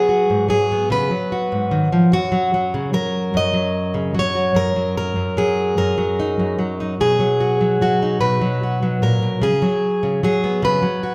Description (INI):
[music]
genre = folk, solo fingerstyle acoustic guitar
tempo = 49 BPM (dotted quarters)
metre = 6/8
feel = straight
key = F# major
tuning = A4 = 440 Hz
[part]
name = fingerpicked plugged-in steel-string acoustic guitar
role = solo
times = 0.0-11.1 s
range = F#2 to D#5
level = -19 LUFS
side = equal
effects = none
[sound]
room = wet large studio reverb, RT60 1.2 s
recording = heard from further back in the room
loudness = -19 LUFS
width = mono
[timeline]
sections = 0.0-11.1 A section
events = none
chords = 0.0 C#7sus4 (rootless); 2.1 F#; 4.5 D#m/F#; 7.0 Bmaj7; 9.4 C#7sus4